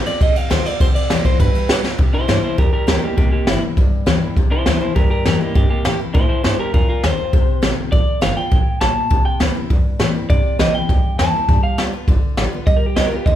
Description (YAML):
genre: rockabilly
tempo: 202 BPM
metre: 4/4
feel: straight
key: C mixolydian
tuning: A4 = 441 Hz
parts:
  - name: picked steel-string acoustic guitar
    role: accompaniment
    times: 0.0-13.4 s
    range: F2 to F4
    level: -24 LUFS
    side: left 5 dB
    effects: none
  - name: upright bass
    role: bass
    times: 0.0-13.4 s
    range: G1 to D3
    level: -24 LUFS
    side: equal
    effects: none
  - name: electric guitar through a small old amp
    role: melody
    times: 0.1-13.4 s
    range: Bb3 to A5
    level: -21 LUFS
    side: equal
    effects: none
  - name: jazz brush drum kit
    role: drums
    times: 0.1-13.3 s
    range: hi-hat, kick drum, ride cymbal, snare drum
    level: -16 LUFS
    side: equal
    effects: none
room: moderate large studio reverb, RT60 1.4 s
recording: band playing live in one room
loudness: -14 LUFS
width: side -11 dB against mid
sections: 0.0-2.0 A section; 2.0-13.4 B section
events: drum fill 1.8; clean electric guitar solo 2.0-13.4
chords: 0.0 F7; 0.8 C7; 1.4 G7; 2.0 C7; 6.7 F7; 9.1 C7; 11.5 G7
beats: 0.21 0.51 | 0.81 1.10 1.40 1.70 | 1.99 2.29 2.59 2.88 | 3.18 3.48 3.77 4.07 | 4.37 4.66 4.96 5.26 | 5.55 5.85 6.15 6.44 | 6.74 7.04 7.33 7.63 | 7.93 8.22 8.52 8.82 | 9.11 9.41 9.71 10.00 | 10.30 10.60 10.89 11.19 | 11.48 11.78 12.08 12.37 | 12.67 12.97 13.26